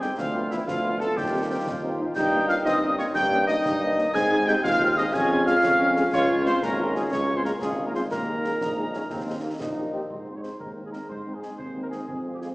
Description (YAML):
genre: military-style march for wind band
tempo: 121 BPM (dotted quarters)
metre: 6/8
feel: straight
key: Ab major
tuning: A4 = 439 Hz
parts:
  - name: dark trumpet section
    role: melody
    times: 0.0-12.5 s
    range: Fb4 to Ab5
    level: -28 LUFS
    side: equal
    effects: none
  - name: dark euphonium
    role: second line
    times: 0.0-12.5 s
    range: Fb3 to Ab4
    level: -30 LUFS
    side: equal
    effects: none
  - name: wooden piccolo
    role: second line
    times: 0.0-9.6 s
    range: Fb5 to Ab6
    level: -28 LUFS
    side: left 1 dB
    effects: none
  - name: mellow French horn section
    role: accompaniment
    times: 0.0-12.5 s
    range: F3 to Ab4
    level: -32 LUFS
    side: left 1 dB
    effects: none
  - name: bright trombone section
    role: sustained chords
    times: 0.0-10.1 s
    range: Bb3 to F4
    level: -30 LUFS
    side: equal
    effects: none
  - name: clear tuba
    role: bass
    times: 0.0-12.5 s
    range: Ab1 to Ab2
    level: -30 LUFS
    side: equal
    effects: none
  - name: concert snare drum, concert bass drum and clash cymbals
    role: drums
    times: 0.0-12.5 s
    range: none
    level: -39 LUFS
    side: equal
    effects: none
room: wet scoring stage reverb, RT60 1.8 s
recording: recorded in a church or concert hall, small speaker sound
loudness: -22 LUFS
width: side -22 dB against mid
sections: 0.0-10.1 A section; 10.1-12.5 B section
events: none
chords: 0.2 Bdim/D; 1.2 Cm/Eb; 2.2 Eb7/G; 4.1 Ab; 5.1 Db/F; 6.1 Db; 8.1 Ebsus4; 9.1 Eb; 10.1 Ab